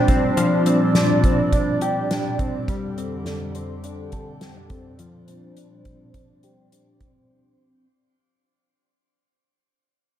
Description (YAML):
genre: dream pop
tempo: 104 BPM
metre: 4/4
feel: straight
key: Bb major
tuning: A4 = 438 Hz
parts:
  - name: hollow soft pad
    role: sustained chords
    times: 0.0-7.3 s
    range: F2 to D5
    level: -24 LUFS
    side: right 2 dB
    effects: lush chorus, low-pass filter, shimmer reverb
  - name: direct-recorded clean electric guitar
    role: arpeggios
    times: 0.0-7.9 s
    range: F3 to A4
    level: -23 LUFS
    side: left 1 dB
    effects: ensemble chorus, low-pass filter, tape echo, shimmer reverb
  - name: soft-mallet drum kit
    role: drums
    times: 0.1-7.1 s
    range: hi-hat, kick drum, snare drum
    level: -24 LUFS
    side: equal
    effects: none
room: moderate plate reverb, RT60 1.6 s, small room ambience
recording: none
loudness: -18 LUFS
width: side -11 dB against mid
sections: 0.0-7.3 A section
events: fade-out 0.0-7.3; filter sweep 0.0-7.3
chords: 0.0 Bb69; 2.7 F69; 5.0 Bb69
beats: | 0.37 0.95 1.52 2.10 | 2.68 3.25 3.83 4.41 | 4.99 5.56 6.14 6.72